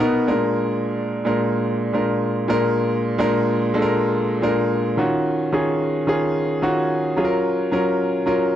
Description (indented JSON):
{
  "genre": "disco",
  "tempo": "109 BPM",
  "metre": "4/4",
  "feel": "straight",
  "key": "unclear",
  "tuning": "A4 = 440 Hz",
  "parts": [
    { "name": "clear concert grand piano", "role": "solo", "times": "0.0-8.6 s", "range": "Bb2 to Db5", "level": "-18 LUFS", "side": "equal", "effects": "tube saturation" }
  ],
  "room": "light reverb",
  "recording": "dry, close 1970s-style studio recording",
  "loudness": "-18 LUFS",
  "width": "side -11 dB against mid",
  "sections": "0.0-5.0 A section; 5.0-8.6 B section",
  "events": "none",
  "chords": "0.3 Bb7; 5.0 Ebm9; 7.2 Gbmaj7"
}